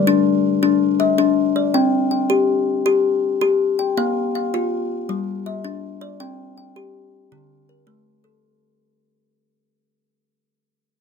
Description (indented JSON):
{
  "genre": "southern african traditional",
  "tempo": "108 BPM (dotted quarters)",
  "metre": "12/8",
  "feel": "straight",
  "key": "unclear",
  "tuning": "A4 = 440 Hz",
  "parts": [
    { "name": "kalimba", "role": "solo", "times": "0.0-8.6 s", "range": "D3 to G5", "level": "-17 LUFS", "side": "left 4 dB", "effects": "none" }
  ],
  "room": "light reverb",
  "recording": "none",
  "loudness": "-17 LUFS",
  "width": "side -6 dB against mid",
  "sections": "0.0-8.4 A section",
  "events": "fade-out 0.0-8.4",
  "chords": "0.0 N.C.; 1.7 C5; 4.0 Bb5; 5.1 G5; 6.2 C5; 7.3 D5"
}